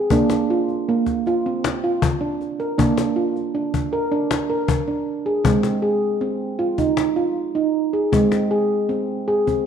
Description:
world meditative, meditative tuned percussion; 157 BPM (eighths); 7/8; straight; Ab lydian; A4 = 440 Hz
handpan; arpeggios; 0.0-9.7 s; Ab3 to Bb4; -19 LUFS; right 2 dB
cajon; percussion; 0.1-9.6 s; -23 LUFS; left 4 dB
wet echo chamber reverb, RT60 1.4 s, small room ambience; dark, warm production; -18 LUFS; side -8 dB against mid
0.0-5.5 A section; 5.5-9.7 B section
0.1 Bb; 5.5 Ab

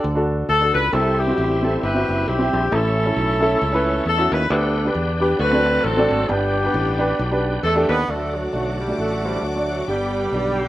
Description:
uptempo gospel; 134 BPM; 4/4; swing 57% on 8ths; G major; A4 = 440 Hz
warm saxophone section; melody; 0.0-10.7 s; A3 to D5; -22 LUFS; left 1 dB
dark concert grand piano; accompaniment; 0.0-10.6 s; G2 to D5; -23 LUFS; equal
fingered electric bass; bass; 0.0-10.7 s; F#1 to E2; -24 LUFS; equal
bright tonewheel organ; sustained chords; 0.9-10.7 s; D3 to A4; -29 LUFS; right 3 dB; fast rotary speaker, overdrive, chorus vibrato
warm tenor saxophone; melody; 7.7-10.7 s; F#3 to B3; -26 LUFS; right 3 dB
warm studio string section; sustained chords; 8.1-10.7 s; D5 to D6; -33 LUFS; equal
little or no reverb; recorded outdoors, with no room sound; -17 LUFS; side -15 dB against mid
0.0-8.1 A section; 8.1-10.7 B section
0.0 D; 0.9 C; 2.7 A; 4.5 G/D; 5.4 D7; 6.3 G; 8.1 D; 9.9 G

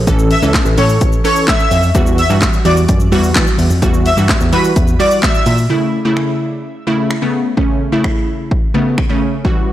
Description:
dance-pop; 128 BPM; 4/4; straight; A4 = 441 Hz
bell-like tine electric piano; bass; 0.0-5.6 s; A1 to E3; -15 LUFS; equal; medium stereo tremolo, sidechain pumping
glassy wavetable pluck; accompaniment; 0.1-9.7 s; C#3 to A4; -16 LUFS; equal; chorus, sidechain pumping
house drum kit; drums; 0.1-9.6 s; finger snaps, handclaps, hi-hat, kick drum, shaker, snare drum; -15 LUFS; equal
airy dreamy lead; melody; 0.3-5.6 s; B4 to E5; -17 LUFS; equal; chorus, sidechain pumping, tape echo
light reverb; blown-out, overdriven recording, overdrive; -11 LUFS; side -13 dB against mid
0.0-5.7 A section; 5.7-9.7 B section
0.0 A; 1.9 Emadd9; 5.7 A

